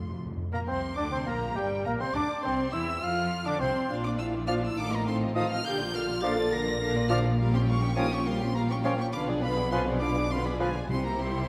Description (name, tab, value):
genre	quick classical-period movement for symphony orchestra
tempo	68 BPM (dotted quarters)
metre	6/8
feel	straight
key	unclear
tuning	A4 = 443 Hz
part	rich chamber violin section	melody	0.0-11.5 s	G5 to Bb6	-38 LUFS	equal	none
part	warm symphonic viola section	accompaniment	0.0-11.5 s	D3 to F4	-38 LUFS	equal	none
part	dark French horn section	sustained chords	0.0-11.5 s	G3 to Bb4	-37 LUFS	equal	none
part	rich chamber double bass section	bass	0.0-11.5 s	F1 to F2	-36 LUFS	equal	none
part	rich symphonic cello section	bass	0.0-11.5 s	F2 to F3	-36 LUFS	equal	none
part	timpani	percussion	0.0-1.2, 10.9-11.5 s	F2 to C3	-39 LUFS	equal	none
part	mellow clarinet	second line	0.5-10.7 s	Db4 to F5	-40 LUFS	equal	none
part	rich chamber violin section	second line	0.5-11.5 s	G3 to G5	-39 LUFS	equal	none
part	silver concert flute	second line	0.5-10.7 s	F5 to F6	-42 LUFS	equal	none
part	warm oboe	second line	0.5-10.7 s	G4 to F5	-40 LUFS	equal	none
part	warm bassoon	accompaniment	0.5-10.7 s	F3 to F4	-38 LUFS	equal	none
room	wet scoring stage reverb, RT60 1.9 s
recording	none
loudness	-28 LUFS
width	mono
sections	0.4-11.5 A section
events	timpani fill 0.0-0.4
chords	0.4 Bbadd9; 1.3 C5; 2.1 F5; 3.9 Bb; 4.8 F7/A; 5.6 Bb; 7.4 Gm7b5/Bb; 9.1 Bdim7; 10.9 C